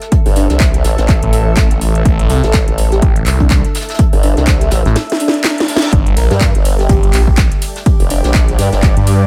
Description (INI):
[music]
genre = bass house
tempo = 124 BPM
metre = 4/4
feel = swing 58% on 16ths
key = unclear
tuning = A4 = 440 Hz
[part]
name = house drum kit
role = drums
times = 0.0-9.2 s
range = handclaps, hi-hat, ride cymbal, snare drum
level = -22 LUFS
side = equal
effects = overdrive
[part]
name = soft brush drum kit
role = drums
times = 0.0-9.2 s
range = hi-hat, snare drum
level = -31 LUFS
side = equal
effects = none
[part]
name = granular cloud pad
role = texture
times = 0.0-9.3 s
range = G4 to A5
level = -27 LUFS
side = equal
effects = built-in reverb, sidechain pumping
[part]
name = electronic kick drum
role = drums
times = 0.1-8.9 s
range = none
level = -15 LUFS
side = equal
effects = overdrive
[part]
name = formant-sweep wobble bass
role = bass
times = 0.3-8.9 s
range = F1 to G2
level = -16 LUFS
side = equal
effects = chorus, overdrive, sidechain pumping
[part]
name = airy dreamy lead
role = melody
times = 0.4-8.3 s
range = D4 to Bb4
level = -23 LUFS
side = equal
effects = chorus, tape echo
[part]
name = phased detuned saw bass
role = bass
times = 1.2-9.3 s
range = G1 to G2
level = -15 LUFS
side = equal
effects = phaser, tube saturation, sidechain pumping
[part]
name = reverse cymbal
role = sound effects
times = 5.3-5.9 s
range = none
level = -27 LUFS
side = equal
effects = none
[sound]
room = little or no reverb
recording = none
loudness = -12 LUFS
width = mono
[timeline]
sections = 0.0-9.3 A section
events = kick drops out 5.0-5.9; drum fill 5.0-5.9; reverse cymbal 5.3-5.9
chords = 0.0 Am; 5.9 Gm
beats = | 0.12 0.60 1.09 1.57 | 2.06 2.54 3.02 3.51 | 3.99 4.47 4.96 5.44 | 5.93 6.41 6.89 7.38 | 7.86 8.35 8.83